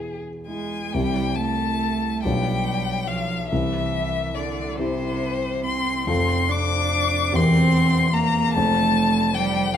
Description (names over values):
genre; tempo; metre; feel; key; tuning
classical, slow romantic movement for piano trio; 47 BPM (dotted quarters); 6/8; uneven beats, rubato; C major; A4 = 440 Hz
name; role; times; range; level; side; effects
rich violin; melody; 0.0-9.8 s; G#4 to D6; -24 LUFS; left 6 dB; none
dark concert grand piano; accompaniment; 0.0-9.8 s; E1 to Bb4; -23 LUFS; left 1 dB; none
rich cello; second line; 0.5-9.8 s; C3 to D4; -26 LUFS; right 6 dB; none
room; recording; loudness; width
wet recital hall reverb, RT60 1.6 s; close, detailed microphones; -19 LUFS; side -9 dB against mid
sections
1.0-9.8 A section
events
none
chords
0.0 E; 1.0 C; 2.2 G7/B; 3.5 C; 6.1 F; 7.3 C7/E; 8.6 F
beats
| 0.95 2.25 | 3.51 4.79 | 6.08 7.34 | 8.56 9.77